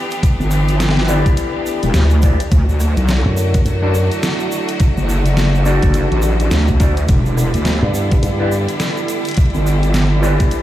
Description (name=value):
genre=glitch hop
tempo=105 BPM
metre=4/4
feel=swing 60% on 16ths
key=E minor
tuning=A4 = 445 Hz
part: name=clear studio string section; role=sustained chords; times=0.0-10.6 s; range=D3 to G4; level=-24 LUFS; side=equal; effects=sidechain pumping
part: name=deep dark ambient pad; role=texture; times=0.0-10.6 s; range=E4 to G5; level=-25 LUFS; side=right 1 dB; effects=chorus, built-in reverb, sidechain pumping
part: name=pop drum kit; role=drums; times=0.1-10.6 s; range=hi-hat, rim click, snare drum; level=-21 LUFS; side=equal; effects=overdrive
part: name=tube shaker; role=percussion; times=0.1-10.6 s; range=none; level=-34 LUFS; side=right 4 dB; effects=none
part: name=electronic kick drum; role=drums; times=0.2-10.5 s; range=none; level=-14 LUFS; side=equal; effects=overdrive
part: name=wobble bass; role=bass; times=0.4-10.4 s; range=E1 to D2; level=-14 LUFS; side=equal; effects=chorus, overdrive
part: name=mellow electric guitar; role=stabs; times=1.1-10.6 s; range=D4 to D5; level=-22 LUFS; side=left 2 dB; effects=warbly pitch drift, sidechain pumping, tape echo
part: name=slap bass with an envelope filter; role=bass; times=3.3-4.1, 7.8-8.7 s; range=F#2 to G2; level=-16 LUFS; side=equal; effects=tube saturation
room=little or no reverb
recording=played on a big sound system in a bare room, stone room reverb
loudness=-13 LUFS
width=side -13 dB against mid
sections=0.0-10.6 A section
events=none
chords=0.0 Em7; 2.5 D; 7.1 Em7